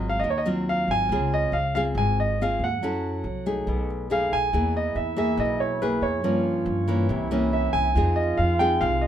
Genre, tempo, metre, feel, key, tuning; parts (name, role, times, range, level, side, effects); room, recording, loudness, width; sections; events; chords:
bossa nova; 140 BPM; 4/4; straight; A4 = 436 Hz
clear concert grand piano; melody; 0.0-9.1 s; B4 to Ab5; -25 LUFS; right 2 dB
nylon-string guitar; accompaniment; 0.0-9.1 s; G2 to A4; -27 LUFS; left 2 dB
upright bass; bass; 0.0-9.1 s; Ab1 to G2; -28 LUFS; equal
mellow trombone; second line; 4.5-9.1 s; E4 to F4; -30 LUFS; right 4 dB
moderate small room reverb, RT60 0.6 s; minimal, uncompressed stereo recording; -22 LUFS; side -10 dB against mid
0.0-9.1 A section
0.0 Ab6; 1.1 Dbmaj7; 2.8 Gbm7; 3.7 B6; 4.5 E; 6.2 Gm7b5; 7.1 C7b9; 8.0 Fm7